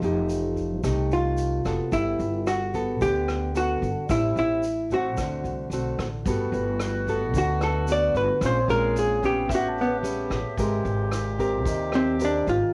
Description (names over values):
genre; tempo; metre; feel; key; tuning
bossa nova; 111 BPM; 4/4; straight; G major; A4 = 442 Hz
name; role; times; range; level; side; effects
nylon-string guitar; accompaniment; 0.0-12.7 s; A2 to Bb4; -30 LUFS; equal; cassette tape
upright bass; bass; 0.0-12.6 s; F1 to Eb2; -32 LUFS; equal; none
vintage brush drum kit; drums; 0.0-12.6 s; hi-hat, kick drum, rim click; -36 LUFS; equal; cassette tape
tube shaker; percussion; 0.0-12.7 s; none; -49 LUFS; equal; none
hollow-body jazz guitar; melody; 1.1-12.7 s; B3 to D5; -27 LUFS; equal; none
mellow woodwind section; sustained chords; 6.2-12.7 s; Bb2 to Ab4; -36 LUFS; equal; cassette tape
warm grand piano; accompaniment; 6.5-11.1 s; C4 to A5; -37 LUFS; equal; cassette tape
room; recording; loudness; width
moderate studio reverb, RT60 0.6 s; home recording on cassette; -25 LUFS; mono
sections
0.0-6.3 A section; 6.3-12.7 B section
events
hollow-body jazz guitar solo 6.3-12.7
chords
0.0 F9; 1.9 Gmaj9; 4.1 Am7; 5.2 D7; 6.3 Gmaj9; 8.4 Bbm7; 9.5 A9; 10.6 Abmaj9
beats
0.30 0.84 1.38 | 1.92 2.47 3.01 3.55 | 4.09 4.63 5.17 5.72 | 6.26 6.80 7.34 7.88 | 8.42 8.96 9.50 10.04 | 10.58 11.12 11.66 12.20